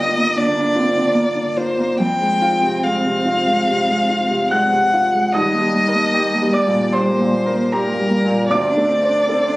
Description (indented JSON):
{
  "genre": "neoclassical piano and strings",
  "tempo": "70-77 BPM",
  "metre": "4/4",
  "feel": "rubato",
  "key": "unclear",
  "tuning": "A4 = 443 Hz",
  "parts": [
    { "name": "warm violin", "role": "melody", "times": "0.0-9.6 s", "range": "Bb4 to G5", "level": "-18 LUFS", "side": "equal", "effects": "none" },
    { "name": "dark cello", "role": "second line", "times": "0.0-9.6 s", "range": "G3 to D4", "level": "-24 LUFS", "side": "right 2 dB", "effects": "slapback echo" },
    { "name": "felt-muted upright piano", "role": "accompaniment", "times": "0.0-9.6 s", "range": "D2 to Gb6", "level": "-19 LUFS", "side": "equal", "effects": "none" }
  ],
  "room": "light reverb",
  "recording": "recorded on a phone in the room, studio reverb",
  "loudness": "-15 LUFS",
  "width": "side -19 dB against mid",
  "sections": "0.0-5.3 A section; 5.3-9.6 B section",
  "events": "none",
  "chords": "0.0 Gm7; 2.0 Fm; 5.3 Eb; 8.5 D7(no3)"
}